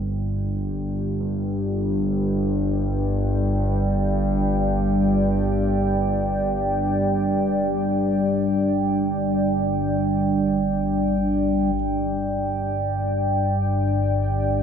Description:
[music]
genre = dark ambient drone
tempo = free time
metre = none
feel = none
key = unclear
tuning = A4 = 440 Hz
[part]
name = dark analog pad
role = sustained chords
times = 0.0-14.6 s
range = G3 to G5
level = -24 LUFS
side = equal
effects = chorus, phaser
[part]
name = dark concert grand piano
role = arpeggios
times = 0.0-11.8 s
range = G2 to C4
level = -43 LUFS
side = equal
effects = none
[part]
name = analog drone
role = drone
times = 0.0-14.6 s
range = G1 to G2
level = -22 LUFS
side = equal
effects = chorus
[sound]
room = wet cathedral reverb, RT60 5.6 s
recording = dark, warm production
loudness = -20 LUFS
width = side -7 dB against mid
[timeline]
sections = 0.0-11.7 A section; 11.7-14.6 B section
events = filter sweep on synth drone 11.7-14.6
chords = 0.0 G5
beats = free time

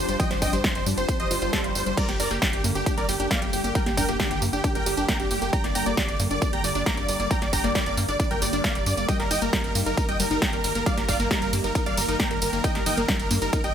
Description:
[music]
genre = uplifting trance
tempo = 135 BPM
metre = 4/4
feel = straight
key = G minor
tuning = A4 = 437 Hz
[part]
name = big supersaw lead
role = melody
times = 0.0-13.7 s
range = G4 to D6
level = -27 LUFS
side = right 1 dB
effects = sidechain pumping, digital delay
[part]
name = analog string pad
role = sustained chords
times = 0.0-13.7 s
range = D3 to D4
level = -32 LUFS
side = equal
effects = ensemble chorus, phaser, sidechain pumping
[part]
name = tight sequencer bass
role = bass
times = 0.0-13.7 s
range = F1 to G2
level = -31 LUFS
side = equal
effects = tube saturation, sidechain pumping
[part]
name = wide unison pluck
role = arpeggios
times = 0.1-13.7 s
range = F3 to F5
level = -31 LUFS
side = left 3 dB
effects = sidechain pumping, digital delay
[part]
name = big-room dance drum kit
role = drums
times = 0.1-13.7 s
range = crash cymbal, hi-hat, ride cymbal, snare drum, tambourine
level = -28 LUFS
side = right 1 dB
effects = none
[part]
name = electronic kick drum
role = drums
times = 0.2-13.6 s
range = none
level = -27 LUFS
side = equal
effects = none
[part]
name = swell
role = sound effects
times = 1.2-2.0 s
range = none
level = -35 LUFS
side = right 2 dB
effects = none
[sound]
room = light reverb, digital ambience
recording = none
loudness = -22 LUFS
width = side -9 dB against mid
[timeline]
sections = 0.0-13.7 A section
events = swell 1.2-2.0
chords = 0.0 Fsus2/G; 2.0 Gm; 9.1 Eb/G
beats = | 0.20 0.64 1.08 1.53 | 1.97 2.42 2.86 3.31 | 3.75 4.20 4.64 5.08 | 5.53 5.97 6.42 6.86 | 7.31 7.75 8.20 8.64 | 9.09 9.53 9.97 10.42 | 10.86 11.31 11.75 12.20 | 12.64 13.09 13.53

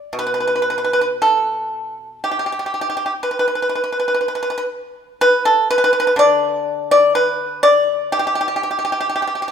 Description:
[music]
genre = chinese traditional, Chinese solo plucked strings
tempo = 58-62 BPM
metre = 4/4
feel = rubato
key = unclear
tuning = A4 = 438 Hz
[part]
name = pipa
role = solo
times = 0.0-9.5 s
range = B2 to D5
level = -15 LUFS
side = equal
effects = none
[sound]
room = moderate scoring stage reverb, RT60 1.6 s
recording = minimal, uncompressed stereo recording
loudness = -15 LUFS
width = side -7 dB against mid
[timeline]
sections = 0.0-9.5 A section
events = none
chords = none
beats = 0.15 1.17 | 2.20 3.22 4.21 5.19 | 6.17 7.15 8.13 9.10

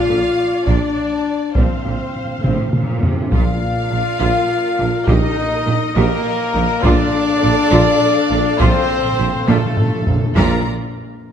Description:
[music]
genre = cinematic, epic orchestral film score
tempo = 68 BPM (dotted quarters)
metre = 6/8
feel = straight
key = Bb major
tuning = A4 = 440 Hz
[part]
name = warm symphonic violin section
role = melody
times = 0.0-10.7 s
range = C5 to F5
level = -31 LUFS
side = left 3 dB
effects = none
[part]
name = warm symphonic violin section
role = second line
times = 0.0-10.7 s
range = A4 to Bb5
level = -26 LUFS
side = left 2 dB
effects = none
[part]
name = warm symphonic viola section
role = accompaniment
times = 0.0-10.7 s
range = C4 to F5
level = -25 LUFS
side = right 1 dB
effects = none
[part]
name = warm French horn section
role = sustained chords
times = 0.0-10.6 s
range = A3 to F4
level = -19 LUFS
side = left 3 dB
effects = none
[part]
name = timpani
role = percussion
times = 0.0-10.6 s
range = Bb2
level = -24 LUFS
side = equal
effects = none
[part]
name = mellow tuba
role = bass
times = 0.1-10.6 s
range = Bb1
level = -25 LUFS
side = right 4 dB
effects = none
[part]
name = rich symphonic cello section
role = bass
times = 0.1-10.7 s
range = A2 to C3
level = -24 LUFS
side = right 3 dB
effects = none
[part]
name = warm studio double bass section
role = bass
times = 0.1-10.7 s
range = Bb1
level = -23 LUFS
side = right 4 dB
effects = none
[part]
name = solo taiko drums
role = drums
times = 0.7-10.5 s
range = none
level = -20 LUFS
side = equal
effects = none
[part]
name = warm trumpet section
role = stabs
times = 3.3-10.6 s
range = A4 to F5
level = -23 LUFS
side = equal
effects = none
[sound]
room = wet scoring stage reverb, RT60 1.7 s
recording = none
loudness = -14 LUFS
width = side -8 dB against mid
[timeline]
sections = 0.0-3.3 A section; 3.3-10.4 B section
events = timpani fill 1.6-3.3, 8.6-10.4; drum fill 2.4-3.3, 9.5-10.4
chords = 0.0 Dm/Bb; 1.6 F/Bb; 3.3 Bb; 5.1 Eb/Bb; 6.8 Dm/Bb; 8.6 F/Bb; 10.4 Bb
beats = 0.68 | 1.56 2.44 | 3.32 4.20 | 5.08 5.96 | 6.84 7.72 | 8.60 9.48 | 10.36

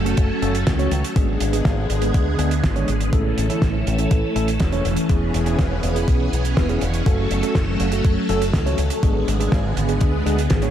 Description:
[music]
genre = italo disco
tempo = 122 BPM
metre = 4/4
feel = straight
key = F# minor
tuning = A4 = 440 Hz
[part]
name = phased string machine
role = sustained chords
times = 0.0-10.7 s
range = D3 to A4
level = -24 LUFS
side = equal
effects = ensemble chorus, phaser
[part]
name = fingered electric bass with an envelope filter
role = bass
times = 0.0-10.7 s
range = E1 to D2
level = -22 LUFS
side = equal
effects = none
[part]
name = mellow tine electric piano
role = stabs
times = 0.1-10.7 s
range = G#3 to C#5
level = -26 LUFS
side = equal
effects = medium stereo tremolo, digital delay
[part]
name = damped 70s drum kit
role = drums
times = 0.1-10.7 s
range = hi-hat, snare drum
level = -26 LUFS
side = right 1 dB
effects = gated reverb
[part]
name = electronic kick drum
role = drums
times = 0.2-10.6 s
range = none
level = -19 LUFS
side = equal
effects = overdrive
[sound]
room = light reverb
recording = none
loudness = -17 LUFS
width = side -10 dB against mid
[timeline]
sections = 0.0-10.7 A section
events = none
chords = 0.0 F#m; 1.2 G#dim; 3.1 A; 5.1 E6; 7.1 F#m; 9.0 G#dim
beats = 0.18 0.67 | 1.16 1.65 2.14 2.64 | 3.13 3.62 4.11 4.60 | 5.09 5.59 6.08 6.57 | 7.06 7.55 8.05 8.54 | 9.03 9.52 10.01 10.51

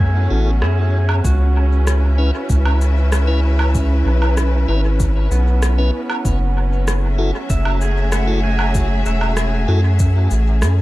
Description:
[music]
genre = ambient dub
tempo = 96 BPM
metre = 4/4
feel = straight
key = C# minor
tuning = A4 = 439 Hz
[part]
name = dark symphonic string section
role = sustained chords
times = 0.0-10.8 s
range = C#3 to E5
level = -24 LUFS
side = left 1 dB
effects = none
[part]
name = pedal steel guitar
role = arpeggios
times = 0.0-10.8 s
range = B3 to G#5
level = -28 LUFS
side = right 3 dB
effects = analog delay
[part]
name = round analog bass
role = bass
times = 0.0-10.8 s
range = E1 to F#2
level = -15 LUFS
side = equal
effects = none
[part]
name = electronic kick drum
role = drums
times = 0.0-10.1 s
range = none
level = -19 LUFS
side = equal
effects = none
[part]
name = tonewheel organ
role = stabs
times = 0.3-9.8 s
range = C#4 to B4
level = -28 LUFS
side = left 2 dB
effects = overdrive, stopped rotary speaker, dub echo
[part]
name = electronic rim click, woodblock and cabasa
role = drums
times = 0.6-10.7 s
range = none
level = -26 LUFS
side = right 1 dB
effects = dub echo
[sound]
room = digital ambience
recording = echo-heavy mix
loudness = -14 LUFS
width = side -17 dB against mid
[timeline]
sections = 0.0-1.2 A section; 1.2-10.8 B section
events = band accent 0.6-0.9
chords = 0.0 F#m7; 1.2 C#m7; 6.2 F#m7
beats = 0.00 0.62 | 1.25 1.88 2.50 3.12 | 3.75 4.38 5.00 5.62 | 6.25 6.88 7.50 8.12 | 8.75 9.38 10.00 10.62

